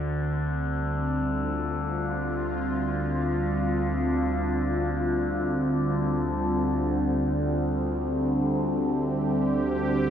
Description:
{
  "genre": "dark ambient drone",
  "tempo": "free time",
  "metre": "none",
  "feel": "none",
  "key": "D minor",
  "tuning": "A4 = 440 Hz",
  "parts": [
    { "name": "sweeping resonant pad", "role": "sustained chords", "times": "0.0-10.1 s", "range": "D3 to G4", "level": "-26 LUFS", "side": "equal", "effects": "chorus" },
    { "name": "overtone-sweeping drone", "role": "drone", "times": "0.0-10.1 s", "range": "D2 to D3", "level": "-28 LUFS", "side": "equal", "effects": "chorus, built-in reverb" }
  ],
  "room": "wet cathedral reverb, RT60 5.2 s",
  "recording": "none",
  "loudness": "-24 LUFS",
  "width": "side -9 dB against mid",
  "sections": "0.0-10.1 A section",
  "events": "none",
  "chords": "0.0 Dm"
}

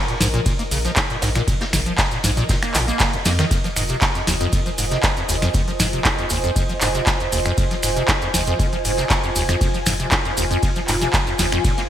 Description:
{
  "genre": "acid house",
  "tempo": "118 BPM",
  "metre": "4/4",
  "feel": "straight",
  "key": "F minor",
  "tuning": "A4 = 440 Hz",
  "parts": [
    { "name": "ethereal airy pad", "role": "texture", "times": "0.0-11.9 s", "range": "F4 to Ab5", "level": "-26 LUFS", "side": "right 1 dB", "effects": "ensemble chorus, built-in reverb, sidechain pumping" },
    { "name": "acid bass, square", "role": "riff", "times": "0.1-11.8 s", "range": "Bb1 to Bb3", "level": "-24 LUFS", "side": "equal", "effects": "lush chorus, sidechain pumping, digital delay" },
    { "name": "booming analog drum machine", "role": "drums", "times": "0.1-11.9 s", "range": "finger snaps, handclaps, hi-hat, ride cymbal, snare drum", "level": "-22 LUFS", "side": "equal", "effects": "gated reverb" },
    { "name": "maracas", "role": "percussion", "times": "0.1-11.9 s", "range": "none", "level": "-30 LUFS", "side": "right 1 dB", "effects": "none" },
    { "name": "round analog bass", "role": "bass", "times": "0.2-11.6 s", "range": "F1 to F2", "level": "-26 LUFS", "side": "equal", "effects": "sidechain pumping" },
    { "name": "vintage brush drum kit", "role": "drums", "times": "0.2-11.9 s", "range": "ride cymbal, snare drum", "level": "-32 LUFS", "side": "left 1 dB", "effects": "none" },
    { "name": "electronic kick drum", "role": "drums", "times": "0.5-11.8 s", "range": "none", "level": "-22 LUFS", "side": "equal", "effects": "none" }
  ],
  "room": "light reverb, small room reverb",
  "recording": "bright 1980s-style digital production",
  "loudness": "-17 LUFS",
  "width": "side -11 dB against mid",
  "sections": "0.0-11.9 A section",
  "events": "none",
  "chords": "0.0 N.C.; 3.5 Fm7"
}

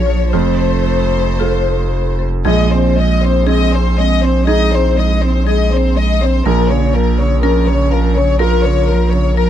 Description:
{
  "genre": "neoclassical piano and strings",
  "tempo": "56-62 BPM",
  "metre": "4/4",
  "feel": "rubato",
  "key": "unclear",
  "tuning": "A4 = 444 Hz",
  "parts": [
    { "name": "warm studio violin section", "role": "melody", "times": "0.0-9.5 s", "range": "Bb4 to Eb5", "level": "-18 LUFS", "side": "left 7 dB", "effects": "none" },
    { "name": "warm cello", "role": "second line", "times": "0.0-9.5 s", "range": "Db3 to C4", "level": "-21 LUFS", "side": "right 6 dB", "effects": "none" },
    { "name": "felt-muted upright piano", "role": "accompaniment", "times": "0.0-9.5 s", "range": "Bb1 to Db5", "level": "-18 LUFS", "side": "right 7 dB", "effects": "none" },
    { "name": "saturated sub bass", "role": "bass", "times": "0.0-9.5 s", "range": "F1 to Bb1", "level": "-15 LUFS", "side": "equal", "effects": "none" },
    { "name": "marimba with hard mallets", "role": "arpeggios", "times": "0.1-9.5 s", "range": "F4 to Bb5", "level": "-25 LUFS", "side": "left 13 dB", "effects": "tape echo" }
  ],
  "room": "little or no reverb",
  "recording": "dry, close 1970s-style studio recording",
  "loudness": "-12 LUFS",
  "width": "side -10 dB against mid",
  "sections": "0.0-2.5 A section; 2.5-9.5 B section",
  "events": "none",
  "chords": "0.3 F; 2.5 Ab/Bb; 6.5 Bbm"
}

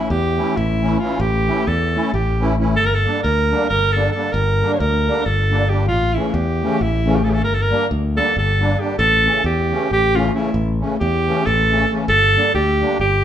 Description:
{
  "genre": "balkan folk, Balkan wedding band",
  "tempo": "270 BPM (eighths)",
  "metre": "7/8",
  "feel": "straight",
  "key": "unclear",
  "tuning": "A4 = 440 Hz",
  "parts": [
    { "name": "clear alto saxophone", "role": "melody", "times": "0.0-13.2 s", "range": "E4 to C#5", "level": "-18 LUFS", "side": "right 1 dB", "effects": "none" },
    { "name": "musette accordion", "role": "accompaniment", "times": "0.0-13.0 s", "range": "C#3 to E4", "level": "-22 LUFS", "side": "left 1 dB", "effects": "none" },
    { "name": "modern bright fingered electric bass", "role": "bass", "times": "0.1-13.2 s", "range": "G1 to E2", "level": "-20 LUFS", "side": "left 1 dB", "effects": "none" }
  ],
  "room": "wet large studio reverb, RT60 1.1 s",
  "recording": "band playing live in one room",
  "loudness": "-15 LUFS",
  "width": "side -10 dB against mid",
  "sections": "0.0-9.0 A section; 9.0-13.2 B section",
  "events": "none",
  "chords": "0.0 A; 2.8 Gm; 5.9 A; 7.4 Gm; 9.0 A; 12.1 Gm"
}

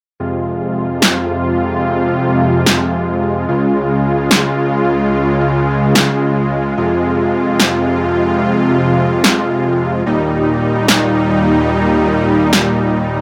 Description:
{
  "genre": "heavy wobble dubstep",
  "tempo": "146 BPM",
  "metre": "4/4",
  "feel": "swing 54% on 16ths, half-time",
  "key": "F minor",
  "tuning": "A4 = 439 Hz",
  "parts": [
    { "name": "supersaw chords", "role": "sustained chords", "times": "0.2-13.2 s", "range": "Db2 to F4", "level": "-15 LUFS", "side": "equal", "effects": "low-pass filter" },
    { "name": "electronic snare drum", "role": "drums", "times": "1.0-12.6 s", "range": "none", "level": "-14 LUFS", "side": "equal", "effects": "none" }
  ],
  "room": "moderate digital room reverb, RT60 1.1 s",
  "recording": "none",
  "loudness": "-14 LUFS",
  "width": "mono",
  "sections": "0.2-13.2 A section",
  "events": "none",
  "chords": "0.2 Fm; 3.5 Db; 6.8 Fm; 10.1 Eb"
}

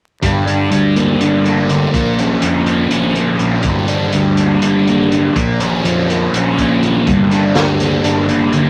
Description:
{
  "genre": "psychedelic rock",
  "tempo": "246 BPM (eighths)",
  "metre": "7/8",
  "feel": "straight",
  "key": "unclear",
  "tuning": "A4 = 441 Hz",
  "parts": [
    { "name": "thick fuzz guitar", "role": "riff", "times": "0.2-8.7 s", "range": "G2 to D4", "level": "-16 LUFS", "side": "equal", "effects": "distortion, phaser" },
    { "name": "fuzz fingered electric bass", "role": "bass", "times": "0.2-8.7 s", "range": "G1 to F2", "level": "-21 LUFS", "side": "equal", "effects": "overdrive" },
    { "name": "crunchy breakbeat drum kit", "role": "drums", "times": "0.2-8.6 s", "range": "hi-hat, kick drum, snare drum", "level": "-24 LUFS", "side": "equal", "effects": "none" }
  ],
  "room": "moderate studio reverb, RT60 0.8 s",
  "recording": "vinyl crackle",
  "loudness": "-14 LUFS",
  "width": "mono",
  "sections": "0.2-8.7 A section",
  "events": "none",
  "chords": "0.2 Gm; 1.9 Bbm; 3.6 Gm; 5.4 Bbm; 7.1 Gm"
}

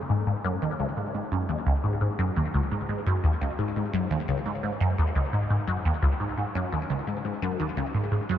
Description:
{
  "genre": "ambient",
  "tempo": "86 BPM",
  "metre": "4/4",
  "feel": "straight",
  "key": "unclear",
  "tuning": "A4 = 440 Hz",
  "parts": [
    { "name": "resonant blip pluck", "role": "solo", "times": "0.1-8.4 s", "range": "Db2 to Ab2", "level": "-25 LUFS", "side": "equal", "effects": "phaser, lush chorus, ping-pong delay" }
  ],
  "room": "moderate huge ambient reverb, RT60 9.1 s",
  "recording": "in a vast, echoing space, nothing above 10.5 kHz",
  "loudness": "-25 LUFS",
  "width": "side -10 dB against mid",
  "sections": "0.0-8.4 A section",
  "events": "none",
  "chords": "none"
}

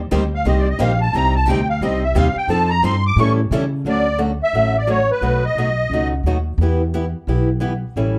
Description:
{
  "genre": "acoustic string swing (jazz manouche)",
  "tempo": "176 BPM",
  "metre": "4/4",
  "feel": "swing 61% on 8ths",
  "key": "D major from 3.9 s",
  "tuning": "A4 = 440 Hz",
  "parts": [
    { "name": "upright bass", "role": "bass", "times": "0.0-8.2 s", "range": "A1 to C#3", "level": "-21 LUFS", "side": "equal", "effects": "none" },
    { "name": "picked old ladder-braced acoustic guitar", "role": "accompaniment", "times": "0.1-8.2 s", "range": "B2 to C5", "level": "-25 LUFS", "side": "equal", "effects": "none" },
    { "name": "picked steel-string acoustic guitar", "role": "accompaniment", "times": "0.1-3.6 s", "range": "C3 to C5", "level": "-28 LUFS", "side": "equal", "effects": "none" },
    { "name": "musette accordion", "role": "melody", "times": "0.3-6.1 s", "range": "B4 to D6", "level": "-22 LUFS", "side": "equal", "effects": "none" }
  ],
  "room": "moderate club reverb, RT60 0.7 s",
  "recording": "none",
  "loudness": "-18 LUFS",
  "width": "mono",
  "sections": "0.0-3.9 A section; 3.9-8.2 B section",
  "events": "accordion solo 0.0-3.9",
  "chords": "0.0 Eb6; 1.1 Cm; 2.5 F7; 3.2 A7; 3.9 Dmaj7; 5.2 B7; 6.6 Em"
}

